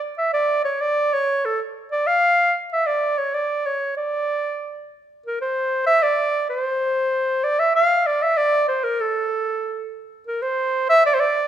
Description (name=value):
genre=klezmer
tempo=95 BPM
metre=2/4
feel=straight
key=D harmonic minor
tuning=A4 = 440 Hz
part: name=warm clarinet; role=solo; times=0.0-11.5 s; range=A4 to F5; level=-18 LUFS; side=right 1 dB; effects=none
room=moderate recital hall reverb, RT60 1.6 s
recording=minimal, uncompressed stereo recording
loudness=-18 LUFS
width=side -10 dB against mid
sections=0.0-5.2 A section; 5.2-11.5 B section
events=none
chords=none